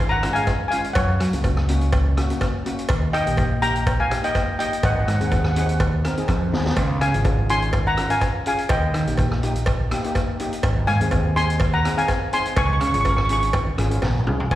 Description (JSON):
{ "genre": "calypso", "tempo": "124 BPM", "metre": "4/4", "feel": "straight", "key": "Db major", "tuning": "A4 = 440 Hz", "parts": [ { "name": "steel pan", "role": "melody", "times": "0.0-14.6 s", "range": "Db5 to Db6", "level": "-23 LUFS", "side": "left 1 dB", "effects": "slapback echo" }, { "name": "steel pan", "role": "accompaniment", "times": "0.0-14.5 s", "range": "Ab3 to Eb5", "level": "-29 LUFS", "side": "left 2 dB", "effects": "slapback echo" }, { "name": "growling fingered electric bass", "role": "bass", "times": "0.0-14.6 s", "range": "Ab1 to Gb3", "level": "-21 LUFS", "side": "equal", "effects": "overdrive" }, { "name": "street-band drum kit", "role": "drums", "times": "0.2-14.6 s", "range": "hi-hat, kick drum, rim click, snare drum, toms", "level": "-25 LUFS", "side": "equal", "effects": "none" }, { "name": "cowbell", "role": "percussion", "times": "0.5-14.6 s", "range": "none", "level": "-30 LUFS", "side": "right 1 dB", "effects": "slapback echo" } ], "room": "studio ambience", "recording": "live gig heard through the venue's PA, recital hall reverb", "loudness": "-18 LUFS", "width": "side -14 dB against mid", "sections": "0.0-14.5 A section", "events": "steel pan fill 6.0-6.8; drum fill 6.5, 14.0-14.5", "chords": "0.0 Db; 1.0 Gb; 2.9 Eb; 4.8 Ab; 6.8 Db; 8.7 Eb; 10.6 Ab; 12.6 Db" }